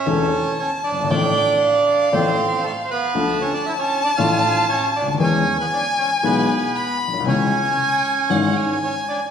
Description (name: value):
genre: tango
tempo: 117 BPM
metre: 4/4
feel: rubato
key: unclear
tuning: A4 = 437 Hz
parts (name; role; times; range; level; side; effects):
- bandoneon; melody; 0.0-9.2 s; A3 to F5; -21 LUFS; right 4 dB; none
- warm violin; second line; 0.0-9.3 s; F5 to B5; -22 LUFS; left 2 dB; none
- warm upright piano; accompaniment; 0.1-8.5 s; E1 to A4; -22 LUFS; left 3 dB; none
room: wet recital hall reverb, RT60 1.6 s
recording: recorded in a church or concert hall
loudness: -17 LUFS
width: side -8 dB against mid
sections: 0.0-9.3 A section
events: none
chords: 0.0 A; 1.1 F/A; 3.1 Dm; 5.2 E; 7.3 C#m